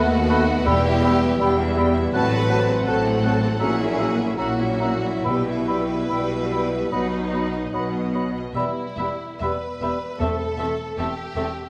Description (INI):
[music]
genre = classical, slow romantic movement for symphony orchestra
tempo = 65-82 BPM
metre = 4/4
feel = rubato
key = E minor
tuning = A4 = 439 Hz
[part]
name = clear symphonic violin section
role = melody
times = 0.0-11.4 s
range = D#5 to A5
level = -37 LUFS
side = equal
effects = none
[part]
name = clear oboe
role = second line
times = 0.0-11.5 s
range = D#5 to F#5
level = -34 LUFS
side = equal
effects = none
[part]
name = mellow clarinet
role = second line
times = 0.0-11.5 s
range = B3 to C#4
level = -34 LUFS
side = equal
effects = none
[part]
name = rich symphonic violin section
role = second line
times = 0.0-11.7 s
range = E4 to B4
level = -31 LUFS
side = equal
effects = none
[part]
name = mellow bassoon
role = accompaniment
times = 0.0-11.5 s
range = F#3 to A3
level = -34 LUFS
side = equal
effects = none
[part]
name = rich symphonic viola section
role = accompaniment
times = 0.0-11.4 s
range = G3 to B4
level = -32 LUFS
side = equal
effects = none
[part]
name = dark French horn section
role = sustained chords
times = 0.0-10.5 s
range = F#3 to E4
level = -29 LUFS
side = equal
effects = none
[part]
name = rich symphonic cello section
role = bass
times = 0.0-11.4 s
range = D#2 to B2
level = -30 LUFS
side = equal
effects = none
[part]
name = rich symphonic double bass section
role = bass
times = 0.0-11.4 s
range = E1 to D#2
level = -30 LUFS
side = equal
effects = none
[part]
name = mellow concert flute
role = second line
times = 0.3-11.5 s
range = A5 to B5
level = -33 LUFS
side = equal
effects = none
[part]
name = timpani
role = percussion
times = 0.7-11.3 s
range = E2 to B2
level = -33 LUFS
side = equal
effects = none
[sound]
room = wet concert hall reverb, RT60 1.9 s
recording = vinyl crackle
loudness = -22 LUFS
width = mono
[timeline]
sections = 0.0-11.7 A section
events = none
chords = 0.0 B7/D#; 0.7 Em; 2.1 F#dim/A; 3.6 F#7/A#; 5.3 Em/B; 6.9 B; 8.5 Em; 10.2 Am/E